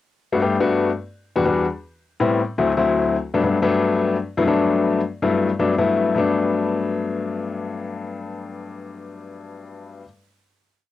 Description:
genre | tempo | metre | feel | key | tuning
jazz | 159 BPM | 4/4 | straight | G major | A4 = 440 Hz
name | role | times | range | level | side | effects
warm baby grand piano | solo | 0.3-10.0 s | D2 to G4 | -19 LUFS | left 3 dB | none
room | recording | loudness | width
moderate booth ambience, RT60 0.1 s | home recording on cassette | -18 LUFS | side -13 dB against mid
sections
0.1-6.2 A section; 6.2-9.2 final chord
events
none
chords
0.1 Gmaj7; 0.9 Em7; 1.6 Am7; 2.4 D7; 3.1 Gmaj7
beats
| 0.14 0.52 0.89 1.27 | 1.65 2.02 2.40 2.77 | 3.15 3.52 3.90 4.28 | 4.66 5.03 5.41 5.79 | 6.16 6.54 6.92 7.29 | 7.67 8.05 8.42 8.80

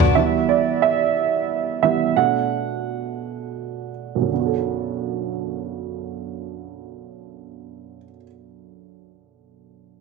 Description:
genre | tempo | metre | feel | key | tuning
pop | 53-61 BPM (dotted quarters) | 6/8 | straight | B minor | A4 = 435 Hz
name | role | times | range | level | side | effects
warm upright piano | accompaniment | 0.0-10.0 s | B1 to F#5 | -21 LUFS | right 10 dB | none
room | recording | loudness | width
moderate plate reverb, RT60 1.6 s, small room ambience | 1960s-style stereo | -20 LUFS | side -4 dB against mid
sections
0.2-4.3 A section; 4.3-8.8 B section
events
slowing down 0.2-4.3; upright piano solo 0.2-4.3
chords
0.2 Em; 2.2 Bm7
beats
| 0.17 1.16 | 2.17 3.22 | 4.31 5.43 | 6.56 7.68

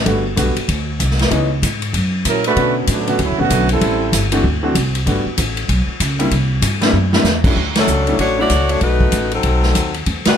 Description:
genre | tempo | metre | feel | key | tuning
jazz, big band swing | 192 BPM | 4/4 | swing 62% on 8ths | unclear | A4 = 441 Hz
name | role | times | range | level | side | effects
upright bass | bass | 0.0-10.3 s | G1 to B2 | -18 LUFS | equal | none
clear baby grand piano | accompaniment | 0.1-8.5 s | D3 to F#4 | -20 LUFS | equal | none
swinging big-band drum kit | drums | 0.1-10.3 s | crash cymbal, hi-hat, kick drum, ride cymbal, snare drum | -19 LUFS | equal | none
brilliant trombone section | second line | 2.3-4.3 s | D3 to B4 | -18 LUFS | right 4 dB | none
warm saxophone section | melody | 7.8-10.4 s | F#3 to D5 | -17 LUFS | left 2 dB | none
room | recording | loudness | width
little or no reverb | none | -14 LUFS | side -8 dB against mid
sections
0.0-7.6 A section; 7.6-10.4 B section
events
trombone section solo 0.0-7.6; drum fill 6.9-7.3; band accent 7.7, 10.2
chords
0.1 Gmaj7; 1.3 C#m9; 1.9 F#7; 2.6 Bm7; 3.8 Am7; 4.4 D9; 5.1 Gmaj9; 6.3 C9; 7.6 Dmaj7; 8.8 B7b9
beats
| 0.06 0.37 0.68 1.00 | 1.31 1.62 1.94 2.25 | 2.56 2.88 3.19 3.50 | 3.82 4.13 4.44 4.75 | 5.07 5.38 5.69 6.00 | 6.32 6.63 6.94 7.25 | 7.57 7.88 8.19 8.50 | 8.81 9.13 9.44 9.75 | 10.06

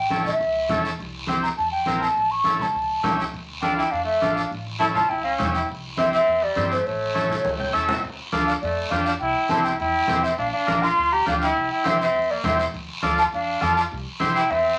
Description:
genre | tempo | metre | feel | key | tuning
latin, cumbia | 204 BPM | 4/4 | straight | D minor | A4 = 436 Hz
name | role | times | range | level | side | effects
mellow hollow silver concert flute | melody | 0.0-14.8 s | C5 to C#6 | -25 LUFS | equal | none
upright bass | bass | 0.0-14.7 s | A1 to G2 | -37 LUFS | equal | none
overdriven combo organ | accompaniment | 0.1-14.4 s | C4 to G5 | -27 LUFS | equal | none
congas | percussion | 0.1-14.3 s | none | -34 LUFS | equal | none
guiro | percussion | 0.1-14.8 s | none | -38 LUFS | equal | none
clear trumpet | second line | 3.6-14.8 s | G3 to G4 | -30 LUFS | equal | none
room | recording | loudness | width
wet studio ambience, RT60 0.5 s | none | -23 LUFS | mono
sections
0.0-8.0 A section; 8.0-14.8 B section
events
drum fill 7.4-8.0; transistor combo organ fill 7.4-8.0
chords
0.0 A7; 1.0 C; 2.2 A7; 3.3 Dm; 4.5 A7; 5.7 C; 6.9 A; 8.0 Dm; 9.2 C; 10.4 Bb; 11.6 C; 12.7 Dm; 13.9 C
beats
0.12 0.41 0.70 | 0.99 1.29 1.58 1.87 | 2.17 2.46 2.75 3.05 | 3.34 3.63 3.92 4.22 | 4.51 4.80 5.10 5.39 | 5.69 5.98 6.27 6.57 | 6.86 7.15 7.45 7.74 | 8.04 8.33 8.62 8.92 | 9.21 9.50 9.80 10.09 | 10.39 10.68 10.97 11.27 | 11.56 11.85 12.15 12.44 | 12.73 13.03 13.32 13.62 | 13.91 14.20 14.50

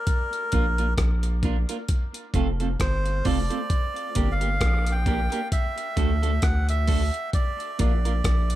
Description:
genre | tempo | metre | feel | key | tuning
dub reggae | 66 BPM | 4/4 | swing 57% on 16ths | unclear | A4 = 441 Hz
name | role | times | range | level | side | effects
melodica | melody | 0.0-8.6 s | Bb4 to G5 | -30 LUFS | right 1 dB | dub echo
breakbeat sampler-style drum kit | drums | 0.1-8.6 s | hi-hat, kick drum, rim click | -25 LUFS | equal | none
clean electric guitar | accompaniment | 0.5-8.1 s | A3 to Bb4 | -31 LUFS | right 4 dB | dub echo
soft dub sub bass | bass | 0.5-8.6 s | F1 to D2 | -24 LUFS | equal | none
room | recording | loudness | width
light reverb | none | -22 LUFS | side -14 dB against mid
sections
0.0-8.6 A section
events
none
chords
0.1 Bb; 1.9 F; 3.7 Gm; 5.5 D; 7.3 Bb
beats
| 0.07 0.98 1.89 2.80 | 3.71 4.61 5.52 6.43 | 7.34 8.25

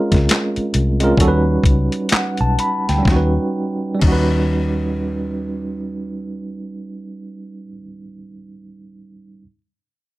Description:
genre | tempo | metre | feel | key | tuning
R&B, neo-soul | 62-68 BPM | 4/4 | swing 60% on 16ths | unclear | A4 = 440 Hz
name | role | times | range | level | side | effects
tine electric piano | accompaniment | 0.0-9.4 s | G3 to B5 | -20 LUFS | right 1 dB | fast tremolo
vintage muted fingered electric bass | bass | 0.1-7.7 s | B1 to Eb2 | -19 LUFS | left 1 dB | none
boom bap sampler-style drum kit | drums | 0.1-4.3 s | crash cymbal, handclaps, hi-hat, kick drum, snare drum | -17 LUFS | left 1 dB | none
room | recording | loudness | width
moderate small room reverb, RT60 0.5 s | none | -16 LUFS | side -18 dB against mid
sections
0.0-3.1 A section; 3.1-6.9 B section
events
slowing down 0.0-3.1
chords
0.0 Bbm9; 1.2 Eb7alt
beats
0.28 1.18 2.10 | 3.05 4.02 4.99 5.95

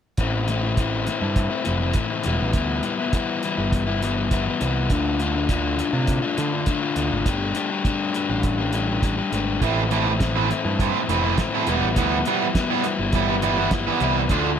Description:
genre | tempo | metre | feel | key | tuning
indie rock | 102 BPM | 4/4 | straight | A minor | A4 = 438 Hz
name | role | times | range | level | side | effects
crunchy overdriven guitar | riff | 0.2-14.6 s | A2 to G4 | -23 LUFS | left 5 dB | none
growling picked electric bass | bass | 0.2-14.6 s | E1 to D3 | -25 LUFS | right 1 dB | overdrive
cloth-damped thuddy drum kit | drums | 0.2-14.4 s | hi-hat, kick drum, snare drum | -24 LUFS | right 1 dB | none
crunchy overdriven guitar | riff | 9.6-14.5 s | D3 to F4 | -23 LUFS | right 9 dB | lush chorus
room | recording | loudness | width
light reverb | none | -20 LUFS | side -8 dB against mid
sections
0.2-14.6 A section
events
none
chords
0.2 Am; 2.2 Em; 4.9 Dm; 7.3 Gsus2; 9.6 Am; 11.7 Em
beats
| 0.17 0.77 1.36 1.95 | 2.54 3.13 3.72 4.31 | 4.90 5.49 6.08 6.67 | 7.26 7.85 8.44 9.03 | 9.62 10.20 10.79 11.38 | 11.96 12.55 13.14 13.72 | 14.30

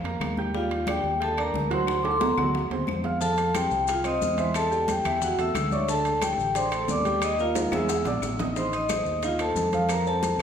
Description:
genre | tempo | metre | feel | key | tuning
latin, salsa | 180 BPM | 4/4 | straight | unclear | A4 = 440 Hz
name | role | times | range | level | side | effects
clear baby grand piano | accompaniment | 0.0-10.4 s | D3 to G6 | -30 LUFS | right 3 dB | none
fingered electric bass | bass | 0.0-10.4 s | A1 to F2 | -32 LUFS | equal | none
bongos | percussion | 0.0-10.4 s | none | -37 LUFS | left 5 dB | none
congas | percussion | 0.0-10.4 s | none | -35 LUFS | left 2 dB | none
timbales | percussion | 0.1-10.4 s | none | -34 LUFS | right 4 dB | none
claves | percussion | 0.2-10.4 s | none | -41 LUFS | left 5 dB | none
vibraphone with hard mallets | melody | 0.6-10.4 s | F4 to E6 | -26 LUFS | left 1 dB | none
maracas | percussion | 3.2-10.4 s | none | -39 LUFS | left 8 dB | none
room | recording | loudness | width
wet recital hall reverb, RT60 1.4 s | recorded in a church or concert hall | -23 LUFS | side -8 dB against mid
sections
0.0-8.6 A section; 8.6-10.4 B section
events
drum fill 1.9-3.2, 7.6-8.6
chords
0.0 Bb5; 0.5 Ebmaj7; 1.9 D7; 3.2 F7; 4.5 A7/E; 5.9 D7sus4; 7.2 Eb; 7.9 E7; 8.6 Adim; 9.9 F5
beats
0.21 | 0.54 0.88 1.21 1.54 | 1.88 2.21 2.54 2.88 | 3.21 3.55 3.88 4.22 | 4.55 4.88 5.22 5.55 | 5.89 6.22 6.55 6.89 | 7.22 7.56 7.89 8.23 | 8.56 8.89 9.23 9.56 | 9.90 10.23

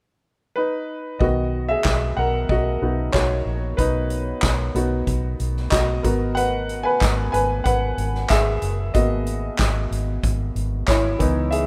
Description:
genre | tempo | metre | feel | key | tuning
piano-driven pop | 93 BPM | 4/4 | straight | B major | A4 = 441 Hz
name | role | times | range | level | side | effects
clear upright piano | accompaniment | 0.6-11.7 s | D#3 to G#5 | -25 LUFS | equal | none
vintage muted fingered electric bass | bass | 1.2-11.7 s | F#1 to C#2 | -27 LUFS | equal | none
soft-mallet drum kit | drums | 1.2-11.7 s | handclaps, hi-hat, kick drum, snare drum | -25 LUFS | equal | none
room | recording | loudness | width
studio ambience | rough home demo mix | -22 LUFS | mono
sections
0.0-1.2 A section; 1.2-11.7 B section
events
upright piano solo 1.2-11.7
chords
0.0 N.C.; 1.2 B; 6.0 G#m7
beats
0.57 | 1.21 1.86 2.50 3.15 | 3.79 4.43 5.08 5.72 | 6.37 7.01 7.66 8.30 | 8.94 9.59 10.23 10.88 | 11.52

